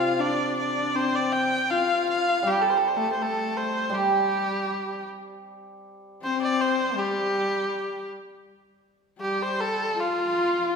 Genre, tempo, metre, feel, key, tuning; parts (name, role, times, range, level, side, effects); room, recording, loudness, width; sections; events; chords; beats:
chinese traditional, Chinese chamber ensemble; 80 BPM; 2/4; rubato; G shang mode; A4 = 440 Hz
rich erhu; melody; 0.0-10.8 s; F4 to G5; -26 LUFS; equal
rich horsehead fiddle; second line; 0.0-10.8 s; G3 to F4; -28 LUFS; left 4 dB
hammered dulcimer; accompaniment; 0.0-6.2 s; C3 to G3; -28 LUFS; right 4 dB
wet recital hall reverb, RT60 1.7 s; recorded in a church or concert hall; -23 LUFS; side -5 dB against mid
0.0-5.5 A section; 5.5-10.8 B section
0.16 | 0.92 1.68 | 2.42 3.17 | 3.91 4.68 | 5.46 6.23 | 6.97 7.71 | 8.45 9.20 | 9.96 10.73